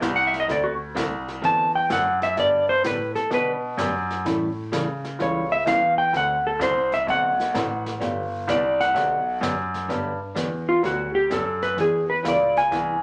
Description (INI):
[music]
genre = country, western swing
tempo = 128 BPM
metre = 4/4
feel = swing 67% on 8ths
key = G major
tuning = A4 = 440 Hz
[part]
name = archtop guitar, miked and amplified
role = accompaniment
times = 0.0-12.9 s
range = D3 to A4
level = -32 LUFS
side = equal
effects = none
[part]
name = warm baby grand piano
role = bass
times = 0.0-13.0 s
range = G1 to C#3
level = -30 LUFS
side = equal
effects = none
[part]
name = jazz brush drum kit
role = drums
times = 0.0-13.0 s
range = brushed snare drum, hi-hat, snare drum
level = -37 LUFS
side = equal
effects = none
[part]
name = clean lap steel guitar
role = melody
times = 0.2-13.0 s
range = F4 to A5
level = -23 LUFS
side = equal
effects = none
[sound]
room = wet studio ambience, RT60 0.5 s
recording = none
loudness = -23 LUFS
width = mono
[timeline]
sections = 0.0-9.9 A section; 9.9-13.0 A section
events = electric slide guitar solo 0.0-9.9, 9.9-13.0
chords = 0.5 D7; 2.4 Gmaj7; 4.3 A7; 6.1 D7; 8.0 Gmaj7; 11.8 E7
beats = 0.02 | 0.49 0.96 1.43 1.90 | 2.37 2.84 3.31 3.78 | 4.25 4.72 5.19 5.66 | 6.13 6.60 7.07 7.54 | 8.01 8.48 8.95 9.42 | 9.89 10.36 10.83 11.30 | 11.78 12.24 12.71